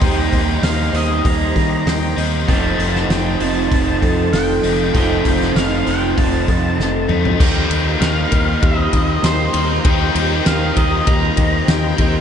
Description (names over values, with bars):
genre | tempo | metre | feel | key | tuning
rock, shoegaze and dream pop | 98 BPM | 4/4 | straight | unclear | A4 = 440 Hz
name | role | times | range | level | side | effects
octave-fuzz lead guitar | melody | 0.0-12.1 s | C5 to Bb5 | -23 LUFS | equal | distortion, ping-pong delay
analog string pad | sustained chords | 0.0-12.2 s | F4 to Bb5 | -27 LUFS | right 1 dB | ensemble chorus
fingerpicked twelve-string acoustic guitar | arpeggios | 0.0-12.2 s | G3 to Bb4 | -27 LUFS | left 2 dB | none
biting overdriven guitar | riff | 0.0-12.2 s | F2 to G4 | -23 LUFS | left 6 dB | lush chorus
electric guitar at the edge of break-up | riff | 0.0-7.4 s | Eb3 to C5 | -22 LUFS | right 7 dB | reverse reverb
growling fingered electric bass | bass | 0.0-12.2 s | F1 to Eb3 | -21 LUFS | equal | overdrive
loose indie drum kit | drums | 0.0-12.1 s | crash cymbal, hi-hat, kick drum, ride cymbal, snare drum, toms | -19 LUFS | equal | none
overdriven electric guitar | riff | 2.5-12.2 s | F2 to Eb4 | -24 LUFS | right 2 dB | none
room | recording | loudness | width
moderate lush hall reverb, RT60 2.8 s | dreamy mix soaked in reverb, nothing above 10.5 kHz | -14 LUFS | side -8 dB against mid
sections
0.0-7.4 A section; 7.4-12.2 B section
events
drum fill 6.8-7.4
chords
0.0 Eb6; 2.5 F7; 7.4 Eb6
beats
| 0.03 0.64 1.26 1.87 | 2.49 3.10 3.72 4.34 | 4.95 5.57 6.18 6.79 | 7.41 8.02 8.63 9.24 | 9.86 10.47 11.08 11.69